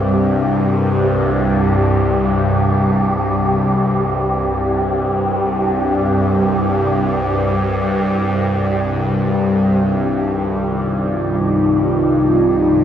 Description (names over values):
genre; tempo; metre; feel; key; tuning
dark ambient drone; free time; none; none; C minor; A4 = 438 Hz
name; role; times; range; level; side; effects
bowed-like drone; drone; 0.0-12.8 s; C2 to G2; -16 LUFS; equal; built-in reverb, phaser
wind-like tuned noise texture; texture; 0.0-12.8 s; G4; -22 LUFS; equal; built-in reverb
deep dark ambient pad; sustained chords; 10.4-12.8 s; C3 to Bb4; -16 LUFS; equal; chorus, built-in reverb
room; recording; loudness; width
wet huge ambient reverb, RT60 7.8 s; none; -14 LUFS; side -9 dB against mid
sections
0.0-12.8 A section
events
fade-out on synth texture 0.0-12.8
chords
0.0 C5; 8.2 Cm7